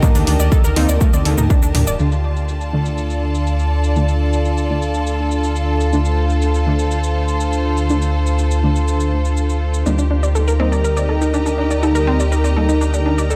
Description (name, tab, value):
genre	melodic techno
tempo	122 BPM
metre	4/4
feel	straight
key	D phrygian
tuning	A4 = 438 Hz
part	analog pluck	arpeggios	0.0-1.9, 9.9-13.4 s	A3 to D5	-25 LUFS	equal	chorus, sidechain pumping, analog delay
part	synth brass stab	stabs	0.0-13.4 s	D3 to Eb4	-26 LUFS	equal	chorus, phaser, sidechain pumping, dub echo
part	electronic kick drum	drums	0.0-1.6 s	none	-16 LUFS	equal	studio ambience
part	house drum kit	drums	0.0-13.4 s	hi-hat, shaker, toms	-29 LUFS	equal	low-pass filter on toms, studio ambience, low-pass filter on perc, low-pass filter on hats
part	rich symphonic string section	texture	0.0-13.4 s	F4 to Bb5	-26 LUFS	equal	sidechain pumping
part	dark detuned saw bass	bass	0.2-13.4 s	D1 to D2	-20 LUFS	equal	sidechain pumping
part	dark analog pad	sustained chords	2.7-13.4 s	D4 to Bb5	-27 LUFS	equal	chorus, sidechain pumping
room	light reverb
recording	echo-heavy mix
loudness	-17 LUFS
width	mono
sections	0.0-2.0 A section; 2.0-13.4 B section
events	none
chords	0.0 Eb; 2.0 Dm; 9.9 Eb/D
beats	| 0.03 0.52 1.01 1.50 | 1.99 2.48 2.98 3.47 | 3.96 4.45 4.94 5.43 | 5.93 6.42 6.91 7.40 | 7.89 8.39 8.88 9.37 | 9.86 10.35 10.85 11.34 | 11.83 12.32 12.81 13.30